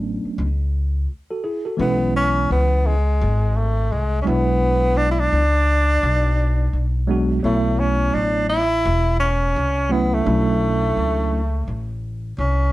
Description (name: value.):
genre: hip hop, jazz-hop.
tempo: 85 BPM.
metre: 4/4.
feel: swing 63% on 16ths.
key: unclear.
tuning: A4 = 445 Hz.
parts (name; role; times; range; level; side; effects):
mellow tine electric piano; accompaniment; 0.0-11.4 s; E3 to C#5; -22 LUFS; right 1 dB; medium stereo tremolo.
upright bass; bass; 0.0-12.7 s; E1 to C#2; -20 LUFS; equal; none.
breathy tenor saxophone; melody; 1.8-12.7 s; G#3 to E4; -21 LUFS; equal; slapback echo.
room: moderate studio reverb, RT60 0.6 s.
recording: dark, warm production.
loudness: -17 LUFS.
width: side -17 dB against mid.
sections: 0.0-1.8 A section; 1.8-12.7 B section.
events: break 1.1-1.8.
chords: 0.0 Bm7; 1.8 C#m7/B; 4.3 E9/B; 7.4 A69; 10.3 Dmaj9/B.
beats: 0.38 1.08 | 1.79 2.50 3.20 3.91 | 4.62 5.32 6.03 6.73 | 7.44 8.14 8.85 9.56 | 10.26 10.97 11.67 12.38.